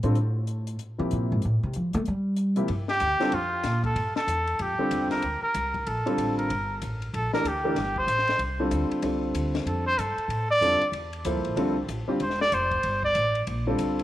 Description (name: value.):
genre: modal jazz.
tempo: 189 BPM.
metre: 4/4.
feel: swing 62% on 8ths.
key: G dorian.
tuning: A4 = 441 Hz.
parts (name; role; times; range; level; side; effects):
warm upright piano; accompaniment; 0.0-14.0 s; C3 to C5; -28 LUFS; equal; none.
upright bass; bass; 0.0-14.0 s; E1 to A3; -29 LUFS; equal; none.
compact cocktail drum kit; drums; 0.0-14.0 s; hi-hat, kick drum, ride cymbal, snare drum; -38 LUFS; left 6 dB; none.
warm trumpet; melody; 2.9-13.4 s; F4 to D5; -26 LUFS; equal; none.
room: moderate spring reverb, RT60 1.9 s.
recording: 1960s-style stereo.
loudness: -24 LUFS.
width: side -14 dB against mid.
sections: 0.0-2.7 A section; 2.7-14.0 A section.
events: upright bass solo 0.0-2.7; trumpet solo 2.7-14.0.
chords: 0.0 F; 2.7 Gm9; 7.8 F/G; 12.8 Gm9.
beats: | 0.15 0.47 0.79 1.10 | 1.42 1.74 2.06 2.37 | 2.69 3.01 3.32 3.64 | 3.96 4.28 4.59 4.91 | 5.23 5.54 5.86 6.18 | 6.50 6.81 7.13 7.45 | 7.76 8.08 8.40 8.72 | 9.03 9.35 9.67 9.98 | 10.30 10.62 10.94 11.25 | 11.57 11.89 12.21 12.52 | 12.84 13.16 13.47 13.79.